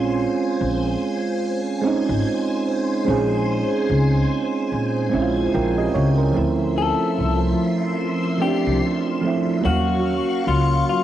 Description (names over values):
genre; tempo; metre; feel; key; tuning
lo-fi hip hop; 73 BPM; 4/4; swing 60% on 16ths; unclear; A4 = 440 Hz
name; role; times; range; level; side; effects
soft electric-piano-like synth keys; accompaniment; 0.0-11.0 s; F3 to G5; -21 LUFS; right 4 dB; chorus, cassette tape
phased string machine; sustained chords; 0.0-11.0 s; F3 to Db6; -27 LUFS; left 2 dB; ensemble chorus, phaser, cassette tape
upright bass; bass; 0.0-10.8 s; Ab1 to Bb2; -22 LUFS; left 1 dB; none
electric guitar through a small old amp; melody; 6.8-11.0 s; F4 to A4; -24 LUFS; left 7 dB; spring reverb
room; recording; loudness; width
light reverb; home recording on cassette, vinyl crackle; -18 LUFS; side -12 dB against mid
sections
0.0-6.4 A section; 6.4-11.0 B section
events
break 0.0-3.1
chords
0.0 Bbm9; 6.4 Dm9; 9.6 Ebm9